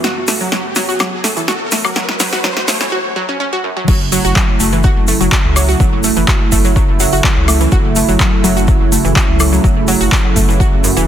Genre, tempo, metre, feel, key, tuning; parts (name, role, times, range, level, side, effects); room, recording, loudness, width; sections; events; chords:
progressive house; 125 BPM; 4/4; straight; F# minor; A4 = 441 Hz
warm analog pad; sustained chords; 0.0-11.1 s; F#2 to F#4; -19 LUFS; right 3 dB; chorus, sidechain pumping
wide unison pluck; arpeggios; 0.0-11.0 s; F#2 to F#4; -18 LUFS; equal; sidechain pumping, dub echo
deep house drum kit; drums; 0.0-10.9 s; crash cymbal, handclaps, hi-hat, snare drum, woodblock; -18 LUFS; equal
egg shaker; percussion; 0.0-11.1 s; -22 LUFS; left 2 dB
riser; sound effects; 0.0-2.9 s; -24 LUFS; equal
round analog bass; bass; 3.9-11.1 s; E1 to C#2; -17 LUFS; equal; sidechain pumping
electronic kick drum; drums; 3.9-10.7 s; -14 LUFS; equal
digital ambience; dense, heavily limited modern master, high-pass filter; -11 LUFS; side -10 dB against mid
0.0-3.9 A section; 3.9-11.1 B section
build-up 0.0-3.9; drum fill 0.0-2.9; riser 0.0-2.9; break 2.9-3.9; drop 3.9-11.1
0.0 Bsus2/F#; 3.9 F#m7